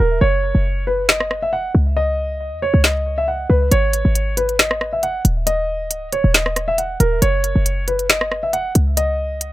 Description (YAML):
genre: hip hop, trap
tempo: 137 BPM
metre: 4/4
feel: half-time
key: unclear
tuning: A4 = 441 Hz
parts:
  - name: dark concert grand piano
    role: melody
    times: 0.0-9.5 s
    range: A#4 to F#5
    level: -20 LUFS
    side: equal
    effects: tape echo
  - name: short 808-style bass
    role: bass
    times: 0.0-9.5 s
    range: C#1 to E2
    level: -18 LUFS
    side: equal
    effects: none
  - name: trap drum kit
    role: drums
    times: 1.1-9.5 s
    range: finger snaps, hi-hat, rim click, snare drum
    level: -16 LUFS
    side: equal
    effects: none
room: light reverb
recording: none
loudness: -15 LUFS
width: side -16 dB against mid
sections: 0.0-9.5 A section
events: break 0.0-3.7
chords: 0.2 F#5; 2.0 N.C.; 3.7 G#5; 5.5 C#sus2; 7.2 F#5; 9.0 N.C.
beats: | 0.21 0.65 1.09 1.53 | 1.96 2.40 2.84 3.28 | 3.72 4.15 4.59 5.03 | 5.47 5.91 6.34 6.78 | 7.22 7.66 8.10 8.53 | 8.97 9.41